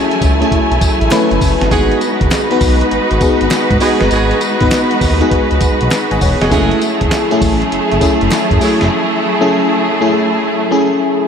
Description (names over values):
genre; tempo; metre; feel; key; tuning
R&B, new jack swing; 100 BPM; 4/4; swing 66% on 16ths; F# dorian; A4 = 441 Hz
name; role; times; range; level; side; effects
FM electric piano with soft pad layer; accompaniment; 0.0-11.3 s; G#3 to G#5; -14 LUFS; left 2 dB; chorus
dark studio string section; sustained chords; 0.0-11.3 s; F#3 to G#5; -17 LUFS; right 1 dB; none
dusty soul sampler-style drum kit; drums; 0.1-8.9 s; handclaps, hi-hat, kick drum, snare drum, tambourine; -18 LUFS; equal; none
smooth synth bass; bass; 0.2-8.9 s; E1 to G#2; -17 LUFS; equal; none
group handclap; percussion; 1.1-8.5 s; none; barely audible; none; none
dark horn section; stabs; 1.7-8.8 s; G#3 to G#4; -24 LUFS; right 5 dB; none
room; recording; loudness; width
wet cathedral reverb, RT60 6.6 s; dreamy mix soaked in reverb; -11 LUFS; side -7 dB against mid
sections
0.0-11.3 A section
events
silent gap 8.9-11.3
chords
0.0 F#m9; 1.7 G#m7; 6.5 F#m9